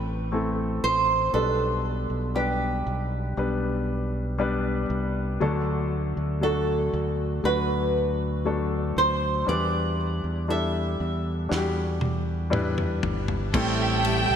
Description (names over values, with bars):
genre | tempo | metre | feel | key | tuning
pop ballad | 59 BPM | 4/4 | straight | E minor | A4 = 440 Hz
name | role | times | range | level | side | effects
flamenco guitar | melody | 0.0-12.5 s | G4 to E5 | -27 LUFS | right 3 dB | wide subtle chorus
clear baby grand piano | accompaniment | 0.0-14.4 s | A2 to D5 | -28 LUFS | left 3 dB | none
modern bright fingered electric bass | bass | 0.0-14.4 s | G1 to E2 | -28 LUFS | right 1 dB | none
modern studio drum kit | drums | 11.5-14.3 s | crash cymbal, kick drum, ride cymbal, snare drum, toms | -30 LUFS | equal | gated reverb
warm studio violin section | second line | 13.5-14.4 s | G5 | -27 LUFS | right 5 dB | none
warm studio string section | sustained chords | 13.5-14.4 s | A4 to A5 | -29 LUFS | left 1 dB | none
nylon-string guitar | arpeggios | 13.5-14.4 s | A2 to G3 | -29 LUFS | right 3 dB | ensemble chorus, digital delay
room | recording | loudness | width
moderate lush hall reverb, RT60 2.8 s | bright 1980s-style digital production | -23 LUFS | side -8 dB against mid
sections
0.0-13.5 A section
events
drum fill 11.5-13.5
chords
0.0 Amadd9; 1.3 G/B; 5.4 D; 9.5 Em7; 13.5 Am7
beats
0.32 | 1.34 2.35 3.37 4.39 | 5.41 6.42 7.44 8.46 | 9.47 10.49 11.51 12.52 | 13.54